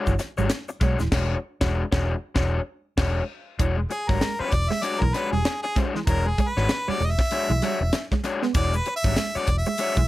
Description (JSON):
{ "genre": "funk", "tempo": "97 BPM", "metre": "4/4", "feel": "swing 60% on 16ths", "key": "E mixolydian", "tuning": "A4 = 441 Hz", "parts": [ { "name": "crunchy overdriven guitar", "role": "accompaniment", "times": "0.0-10.0 s", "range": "G#3 to C#5", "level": "-29 LUFS", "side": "left 4 dB", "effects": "none" }, { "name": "mellow electric guitar", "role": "riff", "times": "0.1-10.1 s", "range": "E3 to B3", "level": "-31 LUFS", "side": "right 7 dB", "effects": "none" }, { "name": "vintage muted fingered electric bass", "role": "bass", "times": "0.1-10.1 s", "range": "D#1 to B1", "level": "-25 LUFS", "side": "equal", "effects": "none" }, { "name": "tight funk drum kit", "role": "drums", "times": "0.1-10.1 s", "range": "crash cymbal, hi-hat, kick drum, snare drum", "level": "-25 LUFS", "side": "equal", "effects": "none" }, { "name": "tube shaker", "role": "percussion", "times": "0.1-1.1, 8.6-10.1 s", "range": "none", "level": "-44 LUFS", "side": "left 3 dB", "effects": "none" }, { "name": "bright harmonica", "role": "melody", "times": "3.9-10.1 s", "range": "G#4 to E5", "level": "-27 LUFS", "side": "equal", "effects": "none" } ], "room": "light reverb", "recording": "none", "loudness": "-22 LUFS", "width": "side -16 dB against mid", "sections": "0.0-3.6 A section; 3.6-10.1 B section", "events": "band accent 1.1-3.6; harmonica solo 3.6-10.1", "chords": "0.0 E13" }